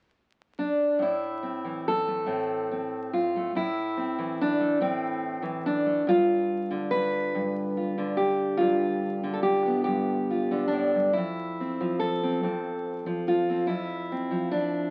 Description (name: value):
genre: folk, solo fingerstyle acoustic guitar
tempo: 47 BPM (dotted quarters)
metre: 6/8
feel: rubato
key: unclear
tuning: A4 = 440 Hz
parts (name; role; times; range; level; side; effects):
- fingerpicked steel-string acoustic guitar; solo; 0.6-14.9 s; F2 to B4; -27 LUFS; equal; none
room: moderate studio reverb, RT60 0.9 s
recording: very old 78 rpm record, vinyl crackle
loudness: -27 LUFS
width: mono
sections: 1.0-14.9 A section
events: none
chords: 0.0 N.C.; 1.0 Am; 6.1 G7; 11.1 Fmaj7